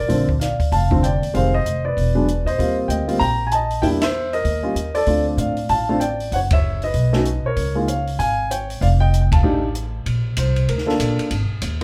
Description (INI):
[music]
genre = jazz piano trio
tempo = 192 BPM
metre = 4/4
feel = swing 61% on 8ths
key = Bb major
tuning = A4 = 440 Hz
[part]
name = dark concert grand piano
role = melody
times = 0.0-11.8 s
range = D3 to Bb5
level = -23 LUFS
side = equal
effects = none
[part]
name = upright bass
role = bass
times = 0.0-11.8 s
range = E1 to A2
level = -23 LUFS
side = equal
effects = none
[part]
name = compact cocktail drum kit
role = drums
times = 0.1-11.8 s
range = hi-hat, kick drum, ride cymbal, snare drum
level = -27 LUFS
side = equal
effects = none
[sound]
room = wet club reverb, RT60 0.7 s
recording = heard from further back in the room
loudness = -20 LUFS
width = mono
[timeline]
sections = 0.1-10.1 A section; 10.1-11.8 B section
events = band accent 4.0, 6.5, 9.3; grand piano solo 10.1-11.8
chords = 0.1 Bbmaj9; 1.3 Fm7; 2.0 E7(no3); 2.6 Eb6; 3.8 Em7b5; 4.4 Eb5; 5.1 Dm7; 6.3 Gb5; 6.9 Badd9; 7.6 Db6; 8.8 F9; 10.1 Bbmaj9; 11.3 Ab5